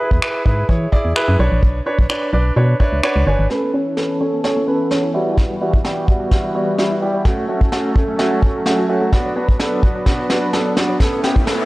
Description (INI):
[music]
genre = dance-pop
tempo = 128 BPM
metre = 4/4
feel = straight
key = B dorian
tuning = A4 = 440 Hz
[part]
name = warm concert grand piano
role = accompaniment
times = 0.0-11.7 s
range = G3 to G#5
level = -19 LUFS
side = right 1 dB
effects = sidechain pumping, low-pass filter
[part]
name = organ-like FM bass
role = bass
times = 0.1-3.5 s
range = G1 to E3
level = -16 LUFS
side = equal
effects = sidechain pumping
[part]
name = vintage brush drum kit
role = drums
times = 0.1-11.7 s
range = finger snaps, hi-hat, kick drum, snare drum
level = -17 LUFS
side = equal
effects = none
[part]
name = warm analog pad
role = sustained chords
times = 3.5-11.7 s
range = E3 to B4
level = -23 LUFS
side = equal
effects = chorus, tremolo, sidechain pumping, low-pass filter
[part]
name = wide unison pluck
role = arpeggios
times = 3.5-11.6 s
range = B2 to F#5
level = -28 LUFS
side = left 1 dB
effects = none
[part]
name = riser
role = sound effects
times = 11.3-11.7 s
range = none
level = -27 LUFS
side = equal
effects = none
[sound]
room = light reverb, studio reverb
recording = dry, gritty hardware recording, cassette tape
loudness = -15 LUFS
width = side -20 dB against mid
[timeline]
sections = 0.0-3.5 A section; 3.5-11.7 B section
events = grand piano fill 2.6-3.5; build-up 3.5-11.7; drum fill 3.5-11.7; filter sweep 3.5-11.7; riser 11.3-11.7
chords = 0.0 E; 1.4 Bmadd9; 3.5 Aadd9; 5.1 Emadd9; 7.3 F#m; 9.1 Bm; 11.0 Aadd9